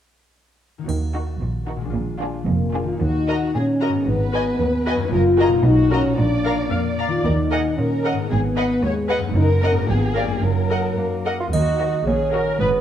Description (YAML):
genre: cinematic, playful, whimsical film cue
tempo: 113 BPM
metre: 2/4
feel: straight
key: Eb minor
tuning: A4 = 440 Hz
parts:
  - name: concert harp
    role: arpeggios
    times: 0.8-12.8 s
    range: Gb2 to Bb4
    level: -28 LUFS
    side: left 6 dB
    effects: none
  - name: rich studio double bass section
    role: bass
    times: 0.9-12.8 s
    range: F1 to Eb2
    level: -24 LUFS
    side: right 3 dB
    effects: none
  - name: warm studio cello section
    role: bass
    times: 0.9-12.8 s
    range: Eb2 to Eb3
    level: -25 LUFS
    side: right 2 dB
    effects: none
  - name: triangle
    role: percussion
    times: 0.9-1.9, 11.5-12.6 s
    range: none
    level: -41 LUFS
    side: equal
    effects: none
  - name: warm studio violin section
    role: second line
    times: 1.1-12.5 s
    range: F4 to Bb5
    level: -30 LUFS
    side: left 1 dB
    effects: none
  - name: warm studio violin section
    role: melody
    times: 1.2-12.5 s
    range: Gb4 to Gb5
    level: -27 LUFS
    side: left 2 dB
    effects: none
  - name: rich studio viola section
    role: accompaniment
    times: 1.2-12.7 s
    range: D4 to F5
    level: -29 LUFS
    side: equal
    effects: none
  - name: mellow French horn section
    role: sustained chords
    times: 2.5-11.2 s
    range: Gb3 to Gb4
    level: -22 LUFS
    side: left 2 dB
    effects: none
  - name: mellow bassoon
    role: accompaniment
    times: 11.0-12.8 s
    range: Bb3 to F4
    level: -22 LUFS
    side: right 4 dB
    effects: none
room: moderate scoring stage reverb, RT60 1.6 s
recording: dark, warm production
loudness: -18 LUFS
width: side -10 dB against mid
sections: 0.9-3.0 A section; 3.0-11.5 B section; 11.5-12.8 B section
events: none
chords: 0.9 Ebm; 1.9 Bb7; 3.0 Ebm; 4.1 Abm7; 5.1 Ebm/Gb; 5.7 Bmaj7; 6.2 Bb; 7.2 Ebm; 8.3 Abm7; 9.4 Ebm/Gb; 9.9 Bb7/Ab; 10.4 Ebm/Gb; 11.5 Ebm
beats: | 0.88 1.41 | 1.94 2.47 | 3.01 3.54 | 4.07 4.60 | 5.12 5.65 | 6.18 6.71 | 7.25 7.78 | 8.31 8.83 | 9.36 9.89 | 10.43 10.98 | 11.53 12.06 | 12.59